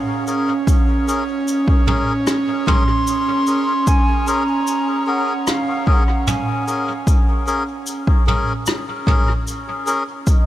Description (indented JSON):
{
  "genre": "ambient dub",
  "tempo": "75 BPM",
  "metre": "4/4",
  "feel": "straight",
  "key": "Bb minor",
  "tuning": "A4 = 439 Hz",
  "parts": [
    { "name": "hollow wooden flute", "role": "melody", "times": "0.0-6.9 s", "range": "F5 to C6", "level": "-24 LUFS", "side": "equal", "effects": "dub echo" },
    { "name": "airy breathy pad", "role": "sustained chords", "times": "0.0-10.3 s", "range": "Db4", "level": "-22 LUFS", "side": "right 3 dB", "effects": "chorus, vintage 12-bit sampler grit" },
    { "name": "melodica", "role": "stabs", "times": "0.3-10.0 s", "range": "Db4 to Bb4", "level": "-24 LUFS", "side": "left 2 dB", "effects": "dub echo" },
    { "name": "vintage brush drum kit", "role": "drums", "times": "0.3-10.4 s", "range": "cabasa, rim click, toms", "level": "-24 LUFS", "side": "equal", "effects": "dub echo" },
    { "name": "electronic kick drum", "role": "drums", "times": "0.7-10.4 s", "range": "none", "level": "-16 LUFS", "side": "equal", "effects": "overdrive" },
    { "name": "wind-like tuned noise texture", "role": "texture", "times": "10.3-10.5 s", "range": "Eb5", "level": "-34 LUFS", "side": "right 5 dB", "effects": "built-in reverb" }
  ],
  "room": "light reverb, small room ambience",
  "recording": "none",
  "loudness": "-16 LUFS",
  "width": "side -13 dB against mid",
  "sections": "0.0-10.5 A section",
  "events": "none",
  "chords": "0.0 Bbm7"
}